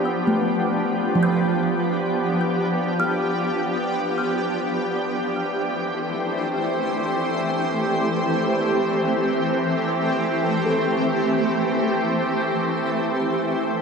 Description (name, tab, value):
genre	ambient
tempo	free time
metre	none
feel	none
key	unclear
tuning	A4 = 439 Hz
part	shimmering ambient pad	sustained chords	0.0-13.8 s	E3 to D5	-21 LUFS	equal	chorus, built-in reverb, shimmer reverb
part	kalimba	arpeggios	0.0-13.8 s	F3 to G6	-26 LUFS	right 1 dB	ping-pong delay, shimmer reverb
part	wind-like tuned noise texture	texture	1.9-13.8 s	G5	-36 LUFS	left 2 dB	none
room	wet lush hall reverb, RT60 3.1 s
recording	none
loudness	-20 LUFS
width	side -5 dB against mid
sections	0.0-13.8 A section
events	none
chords	0.0 G7; 4.8 Am7